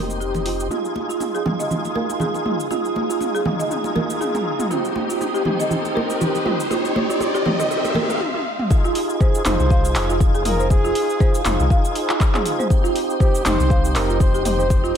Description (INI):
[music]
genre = afro house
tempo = 120 BPM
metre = 4/4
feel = swing 56% on 16ths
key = F minor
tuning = A4 = 440 Hz
[part]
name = trumpet with bucket mute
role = melody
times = 0.0-0.2, 9.2-15.0 s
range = G4 to C5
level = -26 LUFS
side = equal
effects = tape echo
[part]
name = ethereal airy pad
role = sustained chords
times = 0.0-15.0 s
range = G4 to Eb6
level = -30 LUFS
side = equal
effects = ensemble chorus, built-in reverb, sidechain pumping
[part]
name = folk marimba with medium mallets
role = arpeggios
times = 0.0-14.9 s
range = Eb4 to F5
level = -25 LUFS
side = right 2 dB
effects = sidechain pumping, tape echo
[part]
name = tonewheel organ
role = stabs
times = 0.0-15.0 s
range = C4 to Ab4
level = -25 LUFS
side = right 2 dB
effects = chorus vibrato, fast rotary speaker, sidechain pumping, tape echo
[part]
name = round analog bass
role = bass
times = 0.0-14.9 s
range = F1 to C2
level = -23 LUFS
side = left 1 dB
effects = sidechain pumping, high-pass filter
[part]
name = deep house drum kit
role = drums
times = 0.1-14.9 s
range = handclaps, hi-hat, shaker, toms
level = -26 LUFS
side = equal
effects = overdrive, studio reverb
[part]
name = congas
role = percussion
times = 0.1-8.2 s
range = none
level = -27 LUFS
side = right 1 dB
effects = none
[part]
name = riser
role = sound effects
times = 3.1-8.2 s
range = none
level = -28 LUFS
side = equal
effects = none
[part]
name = electronic kick drum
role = drums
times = 8.7-14.8 s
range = none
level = -17 LUFS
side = left 1 dB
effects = studio reverb
[sound]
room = light reverb, digital ambience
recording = none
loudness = -17 LUFS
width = side -8 dB against mid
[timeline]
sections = 0.7-8.7 A section; 8.7-15.0 B section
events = build-up 0.7-8.7; drum fill 0.7-8.2, 8.2-8.7; riser 3.1-8.2; break 8.2-8.7; drop 8.7-15.0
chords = 0.0 Cm/F; 0.7 Fm7; 4.7 Cm/F; 8.7 Fm7; 12.7 Cm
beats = 0.21 | 0.71 1.21 1.71 2.21 | 2.71 3.21 3.71 4.21 | 4.71 5.21 5.71 6.21 | 6.71 7.21 7.71 8.21 | 8.71 9.21 9.71 10.21 | 10.71 11.21 11.71 12.21 | 12.71 13.21 13.71 14.21 | 14.71